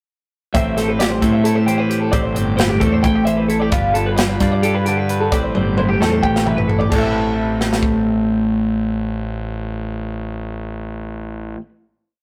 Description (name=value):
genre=math rock and midwest emo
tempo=264 BPM (eighths)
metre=7/8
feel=straight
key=A minor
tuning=A4 = 440 Hz
part: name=twelve-string electric guitar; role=accompaniment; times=0.5-11.7 s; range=A2 to C5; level=-21 LUFS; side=equal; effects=none
part: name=twelve-string electric guitar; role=arpeggios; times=0.5-11.6 s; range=G4 to A5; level=-24 LUFS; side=equal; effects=none
part: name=fuzz fingered electric bass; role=bass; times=0.5-11.6 s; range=G1 to A2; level=-25 LUFS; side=equal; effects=overdrive
part: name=crisp fusion drum kit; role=drums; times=0.5-7.9 s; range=crash cymbal, hi-hat, kick drum, snare drum, toms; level=-23 LUFS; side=equal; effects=none
room=light reverb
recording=rough rehearsal-room recording, tube saturation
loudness=-18 LUFS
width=mono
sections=0.5-6.9 A section; 6.9-10.1 final chord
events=drum fill 5.5-6.9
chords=0.5 Am7; 3.7 G7; 5.3 Am9